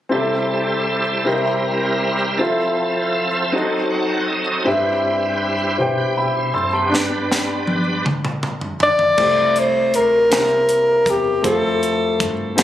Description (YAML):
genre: slow gospel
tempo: 53 BPM (dotted quarters)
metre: 6/8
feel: straight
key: C major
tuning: A4 = 445 Hz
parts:
  - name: clear grand piano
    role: accompaniment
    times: 0.1-12.6 s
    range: G2 to E6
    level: -20 LUFS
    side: left 1 dB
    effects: plate reverb
  - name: bright tonewheel organ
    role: sustained chords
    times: 0.1-8.1 s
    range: F3 to G5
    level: -21 LUFS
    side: right 2 dB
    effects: slow rotary speaker, overdrive, chorus vibrato
  - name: mellow tine electric piano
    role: bass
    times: 4.7-12.6 s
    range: C2 to B2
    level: -30 LUFS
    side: equal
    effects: medium stereo tremolo
  - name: crisp fusion drum kit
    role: drums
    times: 6.9-12.6 s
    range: crash cymbal, hi-hat, kick drum, snare drum, toms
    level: -22 LUFS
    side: equal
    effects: none
  - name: clear alto saxophone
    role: melody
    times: 8.8-12.3 s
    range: G4 to D5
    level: -15 LUFS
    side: left 1 dB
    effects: tape echo
room: moderate large studio reverb, RT60 0.8 s, small room ambience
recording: recorded on a phone in the room, club reverb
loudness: -16 LUFS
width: side -12 dB against mid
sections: 0.1-9.2 A section; 9.2-12.6 B section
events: tonewheel organ fill 3.5-4.7; drum fill 6.9-9.2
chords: 0.1 C6; 1.3 C7; 2.4 Fmaj7; 3.5 F#dim7; 4.7 Cmaj7/G; 6.9 G; 9.2 C6; 10.3 C7; 11.4 Fmaj7